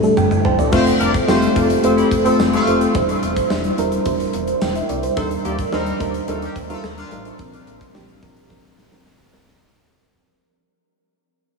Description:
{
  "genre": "1980s-style pop",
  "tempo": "108 BPM",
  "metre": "4/4",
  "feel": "straight",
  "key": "unclear",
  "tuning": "A4 = 436 Hz",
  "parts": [
    { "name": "FM electric piano with auto-pan", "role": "accompaniment", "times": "0.0-9.6 s", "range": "F3 to A5", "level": "-18 LUFS", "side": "right 1 dB", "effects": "none" },
    { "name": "slap-like FM bass", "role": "bass", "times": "0.0-9.5 s", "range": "E1 to Eb2", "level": "-28 LUFS", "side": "left 1 dB", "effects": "none" },
    { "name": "tube shaker", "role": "percussion", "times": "0.0-9.6 s", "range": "none", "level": "-45 LUFS", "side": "left 6 dB", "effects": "none" },
    { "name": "gated 80s drum kit", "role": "drums", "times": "0.2-9.6 s", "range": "crash cymbal, hi-hat, kick drum, snare drum, tambourine, toms", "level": "-23 LUFS", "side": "left 1 dB", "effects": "none" },
    { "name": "warm horn section", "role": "stabs", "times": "0.7-7.2 s", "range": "C3 to D5", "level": "-24 LUFS", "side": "left 2 dB", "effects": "analog delay" }
  ],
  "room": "wet huge ambient reverb, RT60 7.9 s",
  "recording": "dreamy mix soaked in reverb, small room ambience",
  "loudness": "-15 LUFS",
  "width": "side -3 dB against mid",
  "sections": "0.7-9.6 A section",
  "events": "drum fill 0.0-0.7, 8.5-9.6; FM electric piano fill 0.0-0.7; fade-out 0.7-9.6",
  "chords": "0.0 Gsus2; 0.7 F; 2.9 Cadd9/E; 5.2 Ebmaj7; 7.4 Bbadd9"
}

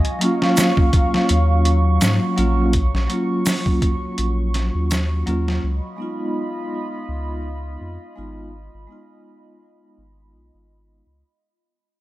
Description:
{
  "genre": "trip hop",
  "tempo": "83 BPM",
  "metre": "4/4",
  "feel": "swing 56% on 16ths",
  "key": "unclear",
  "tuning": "A4 = 440 Hz",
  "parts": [
    { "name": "warbly tape-like pad", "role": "sustained chords", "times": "0.0-11.4 s", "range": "Gb3 to Db6", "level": "-27 LUFS", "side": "equal", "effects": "chorus, built-in reverb" },
    { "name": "warm sub bass", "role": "bass", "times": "0.0-11.2 s", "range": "Ab1 to Ab2", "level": "-20 LUFS", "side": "equal", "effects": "none" },
    { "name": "trip hop sampler-style drum kit", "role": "drums", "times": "0.0-5.6 s", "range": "hi-hat, kick drum, snare drum", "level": "-20 LUFS", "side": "equal", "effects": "overdrive" },
    { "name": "vibraphone with medium mallets", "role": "accompaniment", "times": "0.2-11.0 s", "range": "Gb3 to F4", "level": "-23 LUFS", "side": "equal", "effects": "tremolo, tape echo" },
    { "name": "egg shaker", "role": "percussion", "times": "0.6-5.1 s", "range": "none", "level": "-30 LUFS", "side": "right 5 dB", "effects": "none" }
  ],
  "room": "little or no reverb",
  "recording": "none",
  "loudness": "-17 LUFS",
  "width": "side -16 dB against mid",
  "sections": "0.0-11.4 A section",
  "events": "fade-out 0.0-11.4",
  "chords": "0.0 Ebm9; 5.6 Db9"
}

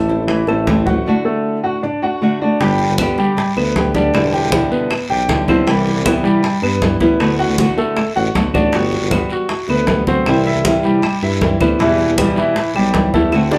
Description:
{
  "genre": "latin, Cuban son and guajira",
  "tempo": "156 BPM",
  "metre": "4/4",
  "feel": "straight",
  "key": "G major",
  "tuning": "A4 = 441 Hz",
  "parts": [
    { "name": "nylon-string guitar", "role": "accompaniment", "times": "0.0-13.6 s", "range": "B2 to G4", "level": "-20 LUFS", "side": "equal", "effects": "none" },
    { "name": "clear concert grand piano", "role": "arpeggios", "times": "0.0-13.6 s", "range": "E3 to G5", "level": "-20 LUFS", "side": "equal", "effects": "none" },
    { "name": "warm tuba", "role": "bass", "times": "0.0-13.6 s", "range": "E1 to G2", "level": "-23 LUFS", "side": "equal", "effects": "none" },
    { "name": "bongos", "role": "percussion", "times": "0.1-13.6 s", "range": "none", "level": "-27 LUFS", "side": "equal", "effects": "none" },
    { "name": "congas", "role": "percussion", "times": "0.1-13.6 s", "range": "none", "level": "-24 LUFS", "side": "equal", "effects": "none" },
    { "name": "claves", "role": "percussion", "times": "0.5-0.7, 3.0-13.5 s", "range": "none", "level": "-31 LUFS", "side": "equal", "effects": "none" },
    { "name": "guiro", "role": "percussion", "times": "2.6-13.6 s", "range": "none", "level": "-33 LUFS", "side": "equal", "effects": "none" }
  ],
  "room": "wet studio reverb, RT60 0.6 s",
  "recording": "heard from further back in the room",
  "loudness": "-16 LUFS",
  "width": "mono",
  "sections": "0.0-2.6 A section; 2.6-13.6 B section",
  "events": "drum fill 13.3",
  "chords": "0.0 Am; 1.1 D; 2.6 G; 4.1 Em7; 5.7 Cmaj7; 7.2 D6; 8.7 Gmaj7; 10.3 C; 11.8 Em"
}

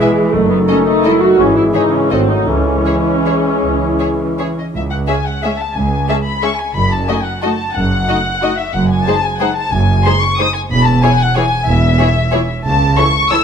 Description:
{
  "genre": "classical, orchestral ballroom waltz",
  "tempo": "148-197 BPM",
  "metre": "3/4",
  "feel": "rubato",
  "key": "C# minor",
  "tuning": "A4 = 441 Hz",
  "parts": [
    { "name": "muted symphonic violin section", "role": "melody", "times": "0.0-13.4 s", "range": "D#5 to E6", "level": "-17 LUFS", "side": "left 4 dB", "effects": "none" },
    { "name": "mellow clarinet", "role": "second line", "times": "0.0-4.5 s", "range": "G#4 to B4", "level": "-21 LUFS", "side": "left 3 dB", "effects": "none" },
    { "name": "muted symphonic violin section", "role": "second line", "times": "0.0-13.4 s", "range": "F#4 to E5", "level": "-22 LUFS", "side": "left 3 dB", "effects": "none" },
    { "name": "muted symphonic viola section", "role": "accompaniment", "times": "0.0-13.4 s", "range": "E3 to F#4", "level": "-17 LUFS", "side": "right 1 dB", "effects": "none" },
    { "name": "warm bassoon", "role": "accompaniment", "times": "0.0-4.5 s", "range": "D#3 to F#3", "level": "-21 LUFS", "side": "right 1 dB", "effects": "none" },
    { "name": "mellow French horn section", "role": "sustained chords", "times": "0.0-4.6 s", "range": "G#3 to F#4", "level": "-19 LUFS", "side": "left 7 dB", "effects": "none" },
    { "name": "muted symphonic cello section", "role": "bass", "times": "0.0-12.9 s", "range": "C#2 to A3", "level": "-20 LUFS", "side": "right 2 dB", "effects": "none" },
    { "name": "muted symphonic double bass section", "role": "bass", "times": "0.3-12.9 s", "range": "E1 to C#2", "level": "-18 LUFS", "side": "right 2 dB", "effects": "none" }
  ],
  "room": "moderate recital hall reverb, RT60 1.6 s",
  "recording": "none",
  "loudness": "-12 LUFS",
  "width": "side -7 dB against mid",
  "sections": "0.0-4.8 A section; 4.8-13.4 B section",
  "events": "none",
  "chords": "0.3 D#dim/F#; 1.4 C#m/G#; 2.1 G#7b9; 2.5 C#m; 6.8 D#dim/F#; 8.7 G#7/F#; 10.7 C#m/E (rootless); 12.7 A/C#"
}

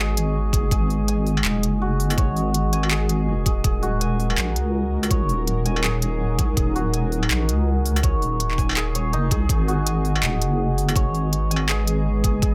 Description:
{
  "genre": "half-time drum and bass",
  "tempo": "164 BPM",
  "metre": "4/4",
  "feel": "swing 58% on 16ths, half-time",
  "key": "G# minor",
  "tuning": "A4 = 440 Hz",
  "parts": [
    { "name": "deep dark ambient pad", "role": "sustained chords", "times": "0.0-12.5 s", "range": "G#3 to F#5", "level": "-31 LUFS", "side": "equal", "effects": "chorus, built-in reverb, sidechain pumping" },
    { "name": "santur", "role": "arpeggios", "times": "0.0-12.5 s", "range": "D#4 to G#5", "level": "-31 LUFS", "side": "equal", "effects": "dub echo" },
    { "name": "deep soft wobble bass", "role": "bass", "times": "0.0-12.5 s", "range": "D#1 to C#2", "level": "-25 LUFS", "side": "equal", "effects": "chorus" },
    { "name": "industrial drum kit", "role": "drums", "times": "0.2-12.5 s", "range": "handclaps, hi-hat, struck metal", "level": "-28 LUFS", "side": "equal", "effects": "none" },
    { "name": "electronic kick drum", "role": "drums", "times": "0.5-12.5 s", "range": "none", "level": "-24 LUFS", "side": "equal", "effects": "none" }
  ],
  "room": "digital ambience",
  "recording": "none",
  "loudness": "-22 LUFS",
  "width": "mono",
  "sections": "0.0-12.5 A section",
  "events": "none",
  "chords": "0.0 G#m; 3.6 D#m7; 9.5 G#m"
}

